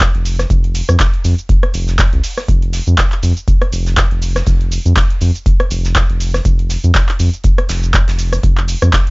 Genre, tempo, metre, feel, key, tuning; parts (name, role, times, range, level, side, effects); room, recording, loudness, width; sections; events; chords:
acid house; 121 BPM; 4/4; swing 56% on 16ths; A4 = 440 Hz
round analog bass; bass; 0.0-8.9 s; F1 to F2; -15 LUFS; equal; sidechain pumping
booming analog drum machine; drums; 0.0-9.1 s; cabasa, handclaps, hi-hat, rim click; -18 LUFS; equal
electronic kick drum; drums; 0.0-9.0 s; -14 LUFS; equal
gated 80s drum kit; drums; 0.0-9.1 s; hi-hat, snare drum; -31 LUFS; right 1 dB; sidechain pumping on hats, high-pass filter on hats, high-pass filter on snare, high-pass filter on room
little or no reverb; nothing above 7.7 kHz; -11 LUFS; side -28 dB against mid
0.0-9.1 A section